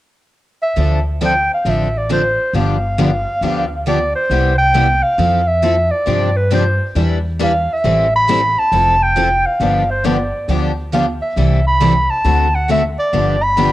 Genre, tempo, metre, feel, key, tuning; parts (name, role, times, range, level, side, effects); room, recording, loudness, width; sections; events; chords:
acoustic string swing (jazz manouche); 136 BPM; 4/4; swing 64% on 8ths; A4 = 439 Hz
mellow clarinet; melody; 0.6-13.7 s; B4 to B5; -16 LUFS; right 1 dB; cassette tape
picked steel-string acoustic guitar; accompaniment; 0.8-13.7 s; C3 to B4; -21 LUFS; left 6 dB
picked steel-string acoustic guitar; accompaniment; 0.8-13.7 s; C3 to B4; -21 LUFS; right 5 dB
upright bass; bass; 0.8-13.7 s; F1 to G2; -19 LUFS; equal
moderate spring reverb, RT60 1.5 s, small room ambience; home recording on cassette; -13 LUFS; side -15 dB against mid
0.8-4.3 A section; 4.3-13.7 B section
0.0 N.C.; 0.8 Dm7; 2.5 G7; 4.3 Cmaj7; 5.2 Fmaj7; 6.1 G7sus4; 7.0 Em7; 7.8 Am7; 8.7 Fmaj7; 9.6 G7; 11.4 C6; 12.3 D7; 13.1 G7